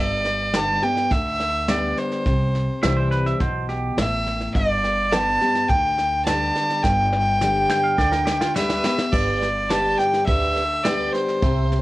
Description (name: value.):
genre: honky-tonk and classic country.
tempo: 105 BPM.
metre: 4/4.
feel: straight.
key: G major.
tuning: A4 = 444 Hz.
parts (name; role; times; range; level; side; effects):
rich fiddle; melody; 0.0-11.8 s; C5 to A5; -21 LUFS; equal; none.
picked steel-string acoustic guitar; accompaniment; 0.0-11.8 s; G2 to G4; -26 LUFS; left 2 dB; cassette tape.
upright bass; bass; 0.0-11.8 s; G1 to D2; -26 LUFS; equal; none.
soft brush drum kit; drums; 0.2-11.8 s; crash cymbal, hi-hat, kick drum, snare drum; -26 LUFS; equal; cassette tape.
pedal steel guitar; second line; 2.8-4.0, 7.7-9.0 s; F4 to G5; -26 LUFS; right 2 dB; cassette tape.
tonewheel organ; accompaniment; 9.1-11.8 s; G4 to E5; -29 LUFS; right 4 dB; slow rotary speaker, chorus vibrato, cassette tape.
room: light reverb.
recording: home recording on cassette.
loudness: -18 LUFS.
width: side -18 dB against mid.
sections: 0.0-9.1 A section; 9.1-11.8 A section.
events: drum fill 6.8-9.1.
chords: 0.0 G; 2.3 C; 4.5 G.